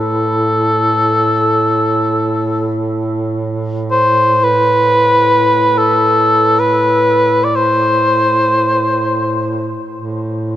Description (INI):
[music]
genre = caucasian folk, Caucasian lament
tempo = free time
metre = none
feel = none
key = A minor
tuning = A4 = 440 Hz
[part]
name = mellow cor anglais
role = melody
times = 0.0-9.7 s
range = A4 to D5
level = -12 LUFS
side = equal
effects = none
[part]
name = mellow duduk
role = drone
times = 0.0-10.6 s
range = A2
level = -18 LUFS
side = right 1 dB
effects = none
[sound]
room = wet cathedral reverb, RT60 5.2 s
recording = dark, warm production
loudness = -11 LUFS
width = side -12 dB against mid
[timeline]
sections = 0.0-10.6 A section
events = none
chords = none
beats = free time